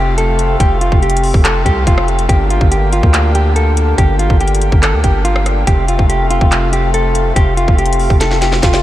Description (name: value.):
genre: hip hop, trap.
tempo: 142 BPM.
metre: 4/4.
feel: half-time.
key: unclear.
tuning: A4 = 440 Hz.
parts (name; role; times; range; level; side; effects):
mellow electric guitar; melody; 0.0-8.8 s; F4 to A4; -17 LUFS; equal; tape echo.
pedal harmonium; sustained chords; 0.0-8.8 s; C3 to G4; -20 LUFS; left 2 dB; none.
long sustained 808-style bass; bass; 0.0-8.8 s; F1 to D2; -15 LUFS; equal; none.
trap drum kit; drums; 0.2-8.8 s; handclaps, hi-hat, kick drum, rim click, snare drum; -15 LUFS; equal; none.
room: moderate huge ambient reverb, RT60 7.8 s.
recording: dreamy mix soaked in reverb.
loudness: -10 LUFS.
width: side -14 dB against mid.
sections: 0.0-8.8 A section.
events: drum fill 8.2-8.8.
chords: 0.0 F; 2.3 Gm; 5.7 F.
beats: 0.18 | 0.60 1.02 1.45 1.87 | 2.29 2.71 3.14 3.56 | 3.98 4.41 4.83 5.25 | 5.67 6.09 6.52 6.94 | 7.36 7.79 8.21 8.63.